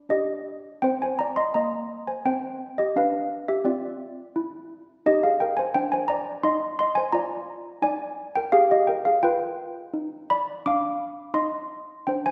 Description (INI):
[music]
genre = classical, tune for handbells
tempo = 86 BPM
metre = 3/4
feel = straight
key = C minor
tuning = A4 = 440 Hz
[part]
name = malleted handbells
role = solo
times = 0.0-12.3 s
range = Bb3 to D6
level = -25 LUFS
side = equal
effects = none
[sound]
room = wet scoring stage reverb, RT60 1.7 s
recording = heard from further back in the room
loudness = -25 LUFS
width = mono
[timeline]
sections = 0.8-12.3 A section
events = none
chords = 0.0 G5; 0.8 Cm; 2.9 Bdim; 5.0 Cm; 7.1 Ddim; 9.2 G7; 11.3 Cm